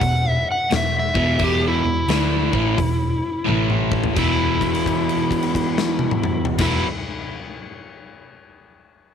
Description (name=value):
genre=blues rock power trio and southern rock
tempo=87 BPM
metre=4/4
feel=swing 64% on 8ths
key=unclear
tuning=A4 = 440 Hz
part: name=overdriven slide guitar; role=melody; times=0.0-6.9 s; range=E4 to F#5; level=-23 LUFS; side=left 2 dB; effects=tape echo
part: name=crunchy overdriven guitar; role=riff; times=0.0-6.9 s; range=E2 to D4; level=-22 LUFS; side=right 1 dB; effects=none
part: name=vintage muted picked electric bass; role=bass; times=0.0-6.8 s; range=E1 to D2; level=-24 LUFS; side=right 1 dB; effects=none
part: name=huge arena drum kit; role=drums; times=0.0-6.7 s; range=crash cymbal, hi-hat, kick drum, snare drum, toms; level=-25 LUFS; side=left 3 dB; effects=none
room=light reverb, small room reverb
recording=1960s-style stereo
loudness=-18 LUFS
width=side -8 dB against mid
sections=0.0-4.2 A section; 4.2-6.9 B section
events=drum fill 3.5-4.2; held note 4.2-6.5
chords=0.0 E5; 3.5 A5; 4.2 E5